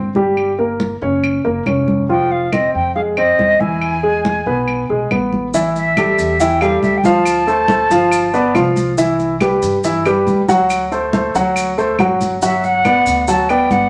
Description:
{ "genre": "Afro-Cuban jazz", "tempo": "140 BPM", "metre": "4/4", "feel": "straight", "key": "A minor from 5.5 s", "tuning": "A4 = 440 Hz", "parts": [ { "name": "warm baby grand piano", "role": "accompaniment", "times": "0.0-13.9 s", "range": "E3 to F#5", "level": "-18 LUFS", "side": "equal", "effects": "none" }, { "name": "upright bass", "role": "bass", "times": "0.0-13.9 s", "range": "F1 to G2", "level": "-28 LUFS", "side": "equal", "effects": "none" }, { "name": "congas", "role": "percussion", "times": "0.1-13.9 s", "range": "none", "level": "-24 LUFS", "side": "equal", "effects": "none" }, { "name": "claves", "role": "percussion", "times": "0.4-13.7 s", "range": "none", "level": "-28 LUFS", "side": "equal", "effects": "none" }, { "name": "breathy mellow silver concert flute", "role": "melody", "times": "2.1-8.8, 12.4-13.9 s", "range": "D5 to A5", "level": "-18 LUFS", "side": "equal", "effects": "none" }, { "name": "maracas", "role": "percussion", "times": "5.5-13.9 s", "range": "none", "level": "-33 LUFS", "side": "equal", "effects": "none" } ], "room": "wet studio reverb, RT60 0.7 s", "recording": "none", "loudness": "-15 LUFS", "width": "mono", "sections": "0.0-5.5 A section; 5.5-13.9 B section", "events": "none", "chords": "0.4 Gdim; 1.2 Gb; 2.1 Fm7; 3.8 E; 5.5 A5; 7.3 Dm7; 8.1 G9; 9.0 Cmaj9; 10.7 D7; 12.4 Gmaj7" }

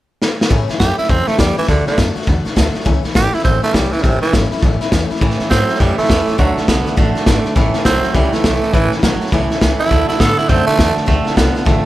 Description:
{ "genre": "rockabilly", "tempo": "204 BPM", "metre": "4/4", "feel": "swing 61% on 8ths", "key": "A major", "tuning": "A4 = 440 Hz", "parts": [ { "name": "raw garage drum kit", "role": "drums", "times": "0.2-11.7 s", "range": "hi-hat, kick drum, snare drum", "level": "-16 LUFS", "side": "equal", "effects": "none" }, { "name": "picked steel-string acoustic guitar", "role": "accompaniment", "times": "0.5-11.8 s", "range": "A2 to F#4", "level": "-23 LUFS", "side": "left 6 dB", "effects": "plate reverb" }, { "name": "twangy electric guitar", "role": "riff", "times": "0.5-11.9 s", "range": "A2 to B3", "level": "-22 LUFS", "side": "right 4 dB", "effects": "none" }, { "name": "upright bass", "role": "bass", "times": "0.5-11.8 s", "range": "G#1 to A2", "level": "-19 LUFS", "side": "equal", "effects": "none" }, { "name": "growling tenor saxophone", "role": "melody", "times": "0.8-11.0 s", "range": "C3 to A4", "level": "-17 LUFS", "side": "right 3 dB", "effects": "plate reverb" } ], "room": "light reverb", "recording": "none", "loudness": "-12 LUFS", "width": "side -15 dB against mid", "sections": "0.5-5.2 A section; 5.2-11.9 B section", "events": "drum fill 0.2", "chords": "0.0 N.C.; 0.5 A; 1.7 D; 2.9 A; 6.4 D; 7.6 A; 9.9 D; 11.1 Dm7" }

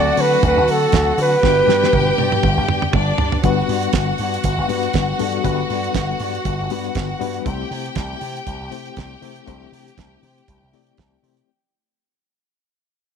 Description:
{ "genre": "disco", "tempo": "119 BPM", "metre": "4/4", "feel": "swing 56% on 16ths", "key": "G major", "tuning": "A4 = 440 Hz", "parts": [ { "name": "breathy flugelhorn", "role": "melody", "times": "0.0-2.7 s", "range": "A4 to D5", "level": "-16 LUFS", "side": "right 2 dB", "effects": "none" }, { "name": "rich studio violin section", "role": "second line", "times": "0.0-11.4 s", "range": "D4 to G5", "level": "-23 LUFS", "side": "left 1 dB", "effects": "none" }, { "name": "mellow reed electric piano", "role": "accompaniment", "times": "0.0-11.5 s", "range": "F#3 to D5", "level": "-24 LUFS", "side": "left 14 dB", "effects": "fast tremolo" }, { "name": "slap bass with an envelope filter", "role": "bass", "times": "0.0-11.4 s", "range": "G1 to D3", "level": "-23 LUFS", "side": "right 1 dB", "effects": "none" }, { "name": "damped 70s drum kit", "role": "drums", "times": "0.2-11.5 s", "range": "hi-hat, kick drum, snare drum, toms", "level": "-22 LUFS", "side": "right 4 dB", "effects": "none" } ], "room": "light reverb, small room ambience", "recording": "1960s-style stereo", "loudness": "-16 LUFS", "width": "side -7 dB against mid", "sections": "0.0-3.4 A section; 3.4-11.5 B section", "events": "drum fill 1.4-3.4; fade-out 3.4-11.5", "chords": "0.0 D7; 1.4 G; 3.4 Gmaj7; 7.5 C6" }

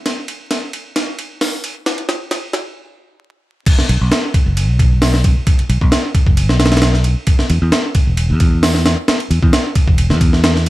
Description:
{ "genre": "breakbeat, breaks", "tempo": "133 BPM", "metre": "4/4", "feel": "swing 53% on 16ths", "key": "unclear", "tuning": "A4 = 440 Hz", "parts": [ { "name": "breakbeat sampler-style drum kit", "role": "drums", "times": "0.1-10.7 s", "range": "crash cymbal, hi-hat, kick drum, ride cymbal, snare drum", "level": "-14 LUFS", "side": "equal", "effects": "none" }, { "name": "fingered electric bass", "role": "bass", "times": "3.9-10.7 s", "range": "E1 to E2", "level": "-14 LUFS", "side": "equal", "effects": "none" } ], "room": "little or no reverb", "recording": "vinyl crackle, high-pass filter", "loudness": "-12 LUFS", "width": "side -17 dB against mid", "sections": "0.0-3.7 A section; 3.7-10.7 B section", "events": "build-up 0.0-3.7; drum fill 0.1-2.8; stop 2.8-3.7; drop 3.7-10.7", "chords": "none" }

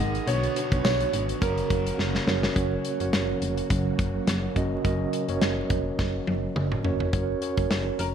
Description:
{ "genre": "1980s-style pop", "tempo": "105 BPM", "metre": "4/4", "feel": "swing 55% on 16ths", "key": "F# major", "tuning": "A4 = 440 Hz", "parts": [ { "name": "clear concert grand piano", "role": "melody", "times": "0.0-2.2, 8.0-8.1 s", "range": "A#4 to D#5", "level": "-30 LUFS", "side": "right 3 dB", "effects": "wide subtle chorus, digital delay" }, { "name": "mellow tine electric piano", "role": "accompaniment", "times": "0.0-8.1 s", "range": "B2 to F#5", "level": "-29 LUFS", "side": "right 2 dB", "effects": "medium stereo tremolo" }, { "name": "overdriven semi-hollow guitar", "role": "accompaniment", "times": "0.0-3.1 s", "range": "F#2 to B3", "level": "-37 LUFS", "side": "equal", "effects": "lush chorus" }, { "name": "string machine, cellos", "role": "sustained chords", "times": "0.0-7.1 s", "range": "C#3 to C#5", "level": "-33 LUFS", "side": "equal", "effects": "ensemble chorus" }, { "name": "solid FM bass", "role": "bass", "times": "0.0-8.1 s", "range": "E#1 to B1", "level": "-30 LUFS", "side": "equal", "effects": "none" }, { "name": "modern studio drum kit", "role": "drums", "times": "0.1-8.1 s", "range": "hi-hat, kick drum, snare drum, tambourine, toms", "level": "-28 LUFS", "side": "equal", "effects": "none" } ], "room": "light reverb, small room ambience", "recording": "bright 1980s-style digital production, vinyl crackle", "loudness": "-23 LUFS", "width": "side -8 dB against mid", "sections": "0.0-2.6 A section; 2.6-7.1 B section; 7.1-8.1 C section", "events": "drum fill 2.0-2.6, 6.0-7.1", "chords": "0.3 Bmadd9; 1.4 F#" }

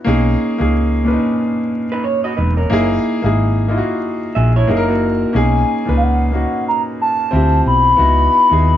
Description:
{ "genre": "R&B", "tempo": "91 BPM", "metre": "4/4", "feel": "swing 60% on 16ths", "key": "B major", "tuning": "A4 = 440 Hz", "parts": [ { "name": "warm concert grand piano", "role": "accompaniment", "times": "0.0-8.8 s", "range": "A#2 to B4", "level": "-18 LUFS", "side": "equal", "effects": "none" }, { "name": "hollow-body short-scale fingered electric bass", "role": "bass", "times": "0.1-8.8 s", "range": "E1 to D#2", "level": "-16 LUFS", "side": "equal", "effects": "none" }, { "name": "electric guitar through a small old amp", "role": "second line", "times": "1.9-5.3 s", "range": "A#3 to E5", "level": "-20 LUFS", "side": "right 4 dB", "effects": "none" }, { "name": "hollow clarinet-like synth lead", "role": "melody", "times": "5.4-8.8 s", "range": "E#5 to B5", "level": "-14 LUFS", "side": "left 2 dB", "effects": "chorus" } ], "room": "moderate studio ambience, RT60 0.5 s", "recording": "band playing live in one room, vinyl crackle, nothing above 7.5 kHz", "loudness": "-13 LUFS", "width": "side -11 dB against mid", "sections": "0.0-8.8 A section", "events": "none", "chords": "0.1 Bmaj9; 2.7 F#9; 4.7 F#6; 5.3 Bmaj9; 7.3 Dm9; 8.0 C#m9" }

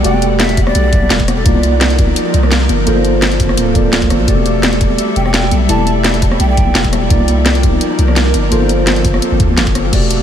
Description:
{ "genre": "liquid drum and bass", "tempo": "170 BPM", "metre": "4/4", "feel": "straight", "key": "unclear", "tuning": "A4 = 440 Hz", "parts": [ { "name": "breathy mellow jazz flute", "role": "melody", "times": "0.0-1.2, 5.2-6.8 s", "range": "D5 to A5", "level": "-23 LUFS", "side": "right 2 dB", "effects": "diffuse ambient delay" }, { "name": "mellow tine electric piano", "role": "accompaniment", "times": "0.0-10.2 s", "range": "A3 to D5", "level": "-17 LUFS", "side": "equal", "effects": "analog chorus, ping-pong delay" }, { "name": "glassy FM pad", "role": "sustained chords", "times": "0.0-10.2 s", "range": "F3 to F#5", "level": "-20 LUFS", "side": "equal", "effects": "ensemble chorus, built-in reverb, sidechain pumping" }, { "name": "long sustained 808-style bass", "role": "bass", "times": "0.0-10.2 s", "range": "D1 to D2", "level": "-15 LUFS", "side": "equal", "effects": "none" }, { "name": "drum and bass drum kit", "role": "drums", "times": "0.0-10.2 s", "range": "crash cymbal, hi-hat, ride cymbal, rim click, snare drum", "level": "-17 LUFS", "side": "equal", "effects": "none" }, { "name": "congas and bongos", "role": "percussion", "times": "0.1-9.9 s", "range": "none", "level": "-23 LUFS", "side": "left 3 dB", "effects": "none" }, { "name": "electronic kick drum", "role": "drums", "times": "0.6-10.0 s", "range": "none", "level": "-15 LUFS", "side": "equal", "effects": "none" } ], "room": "light reverb, digital ambience", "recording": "none", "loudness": "-10 LUFS", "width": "side -9 dB against mid", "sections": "0.0-9.9 A section", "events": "drop 0.0-9.9", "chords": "0.0 Em11; 1.5 Cm11; 2.9 Gm11; 4.3 Em11; 7.1 Cm11; 8.5 Gm11" }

